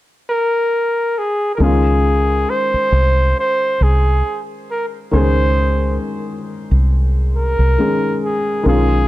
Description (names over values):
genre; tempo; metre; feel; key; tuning
lo-fi hip hop; 68 BPM; 4/4; swing 58% on 16ths; Db major; A4 = 440 Hz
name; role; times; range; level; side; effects
clear flugelhorn; melody; 0.3-9.1 s; Ab4 to C5; -18 LUFS; equal; low-pass filter, plate reverb
dark upright piano; accompaniment; 1.6-9.1 s; Eb3 to Ab4; -20 LUFS; left 2 dB; low-pass filter, plate reverb
deep dub fingered electric bass; bass; 1.6-9.1 s; Cb2 to Db2; -14 LUFS; equal; none
room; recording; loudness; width
light reverb; dark, warm production; -14 LUFS; side -16 dB against mid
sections
0.0-1.6 A section; 1.6-9.1 B section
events
none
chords
0.0 N.C.; 1.6 Dbmaj9